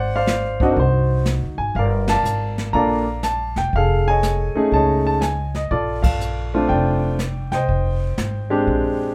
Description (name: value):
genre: jazz piano trio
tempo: 122 BPM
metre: 4/4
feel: swing 66% on 8ths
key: unclear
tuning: A4 = 440 Hz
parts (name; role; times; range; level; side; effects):
- warm concert grand piano; melody; 0.0-9.1 s; Ab3 to Bb5; -22 LUFS; equal; none
- upright bass; bass; 0.0-9.1 s; E1 to D2; -24 LUFS; equal; none
- jazz brush drum kit; drums; 0.3-9.1 s; brushed snare drum, hi-hat, kick drum, ride cymbal, snare drum; -28 LUFS; equal; none
room: moderate club reverb, RT60 0.5 s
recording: none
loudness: -20 LUFS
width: mono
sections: 0.0-9.1 A section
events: band accent 2.0, 6.0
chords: 0.0 Ab7#11; 1.8 Gm7; 3.7 F7alt; 5.7 Bbmaj7; 7.7 Fm7